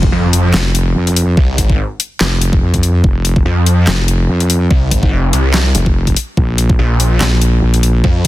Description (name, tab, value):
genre	heavy wobble dubstep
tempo	144 BPM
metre	4/4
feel	swing 55% on 16ths, half-time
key	F minor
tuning	A4 = 442 Hz
part	wobble bass	bass	0.0-8.0 s	F1 to F2	-12 LUFS	equal	chorus, overdrive
part	electronic kick drum	drums	0.0-8.3 s	none	-13 LUFS	equal	overdrive
part	impact	sound effects	0.0-1.4 s	none	-25 LUFS	equal	none
part	snarling distorted saw bass	bass	0.1-8.3 s	F1 to F2	-12 LUFS	equal	distortion, overdrive
part	dubstep drum kit	drums	0.3-8.3 s	handclaps, hi-hat, snare drum	-17 LUFS	left 2 dB	overdrive
room	little or no reverb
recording	dense, heavily limited modern master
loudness	-10 LUFS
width	side -16 dB against mid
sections	0.0-8.3 A section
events	impact 0.0-1.4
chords	0.0 Fm; 6.4 Bb5